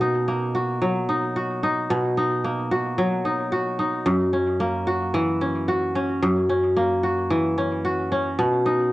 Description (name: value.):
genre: folktronica.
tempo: 111 BPM.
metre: 4/4.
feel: swing 56% on 16ths.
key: B major.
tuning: A4 = 438 Hz.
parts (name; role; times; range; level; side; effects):
kora; solo; 0.0-8.9 s; F#2 to F#4; -20 LUFS; equal; cassette tape, analog delay.
room: wet studio reverb, RT60 0.5 s.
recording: home recording on cassette, nothing above 10.3 kHz.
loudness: -20 LUFS.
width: side -18 dB against mid.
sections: 0.0-8.9 A section.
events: none.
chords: 0.0 Bmaj7; 4.1 F#7; 8.4 Bmaj7.